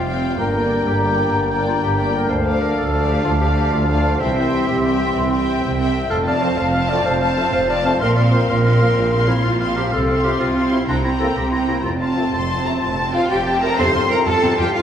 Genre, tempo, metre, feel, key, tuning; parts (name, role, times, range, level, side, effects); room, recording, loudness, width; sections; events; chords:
cinematic, heroic adventure film score; 125 BPM (dotted quarters); 12/8; straight; F major; A4 = 440 Hz
rich chamber violin section; melody; 0.0-14.8 s; F5 to C6; -27 LUFS; left 3 dB
clear clarinet; second line; 0.0-14.8 s; D4 to G5; -24 LUFS; left 1 dB
clear oboe; second line; 0.0-14.8 s; E5 to C6; -28 LUFS; equal
mellow hollow flute section; second line; 0.0-14.8 s; F5 to C6; -26 LUFS; left 2 dB
rich studio violin section; second line; 0.0-14.8 s; D5 to C6; -28 LUFS; left 3 dB
rich symphonic viola section; accompaniment; 0.0-14.7 s; C3 to F4; -26 LUFS; right 1 dB
warm French horn section; sustained chords; 0.0-14.8 s; A3 to G4; -27 LUFS; left 2 dB
warm trombone section; sustained chords; 0.0-14.8 s; C3 to C4; -28 LUFS; right 2 dB
rich studio double bass section; bass; 0.0-14.7 s; F1 to F2; -23 LUFS; right 1 dB
rich symphonic cello section; bass; 0.0-14.8 s; C2 to C5; -23 LUFS; right 2 dB
cymbal swell and tam-tam; percussion; 9.9-14.8 s; -29 LUFS; left 2 dB
wet recital hall reverb, RT60 1.4 s; heard from further back in the room; -16 LUFS; side -9 dB against mid
0.0-13.8 A section; 13.8-14.8 B section
band accent 13.8-14.1
0.4 Gm; 2.3 Dm; 4.2 C; 6.1 F; 8.0 Bbsus2; 9.9 F/C; 10.9 C5; 11.8 F